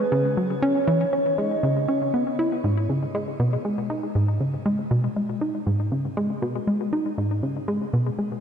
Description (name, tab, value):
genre	ambient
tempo	119 BPM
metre	4/4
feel	straight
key	G# minor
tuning	A4 = 443 Hz
part	soft octave-layered synth lead	melody	0.0-2.4 s	B4 to D#5	-26 LUFS	right 1 dB	chorus, phaser, shimmer reverb, ping-pong delay
part	plucky analog bass	riff	0.0-8.4 s	G#2 to E4	-22 LUFS	equal	ping-pong delay
room	wet lush hall reverb, RT60 2.5 s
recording	dreamy mix soaked in reverb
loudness	-22 LUFS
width	side -8 dB against mid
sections	0.0-2.6 A section; 2.6-8.4 A section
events	none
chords	0.0 C#madd9; 2.6 G#m